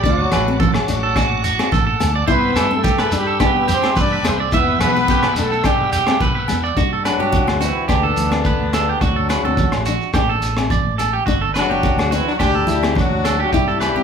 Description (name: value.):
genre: highlife guitar band.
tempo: 107 BPM.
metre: 4/4.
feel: straight.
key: G major.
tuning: A4 = 441 Hz.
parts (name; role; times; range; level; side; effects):
warm horn section; melody; 0.0-14.0 s; D3 to D5; -22 LUFS; left 2 dB; none.
bright tonewheel organ; sustained chords; 0.0-6.7 s; F#5 to E6; -30 LUFS; equal; slow rotary speaker, chorus vibrato.
electric guitar at the edge of break-up; arpeggios; 0.0-14.0 s; F#4 to E5; -21 LUFS; right 5 dB; none.
fingered electric bass; bass; 0.0-14.0 s; G1 to G2; -24 LUFS; equal; none.
crunchy breakbeat drum kit; drums; 0.0-13.9 s; hi-hat, kick drum, rim click; -22 LUFS; equal; none.
congas; percussion; 0.0-13.9 s; none; -27 LUFS; right 3 dB; none.
shekere; percussion; 0.0-14.0 s; none; -29 LUFS; left 1 dB; none.
nylon-string guitar; accompaniment; 0.1-14.0 s; B3 to E4; -26 LUFS; left 5 dB; none.
agogo bells; percussion; 0.3-14.0 s; none; -27 LUFS; left 2 dB; none.
breathy alto saxophone; second line; 7.0-14.0 s; B3 to E4; -26 LUFS; left 5 dB; none.
room: moderate large studio reverb, RT60 1.2 s.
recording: band playing live in one room.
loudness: -15 LUFS.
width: side -7 dB against mid.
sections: 0.0-6.8 A section; 6.8-14.0 B section.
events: none.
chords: 0.0 D; 2.3 C; 4.5 Emadd9; 6.8 Gmaj7; 9.0 D7; 11.3 Gmaj7; 13.5 C6.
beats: | 0.04 0.60 1.16 1.72 | 2.28 2.84 3.40 3.96 | 4.52 5.08 5.64 6.21 | 6.77 7.33 7.89 8.46 | 9.02 9.58 10.14 10.71 | 11.27 11.84 12.40 12.96 | 13.53.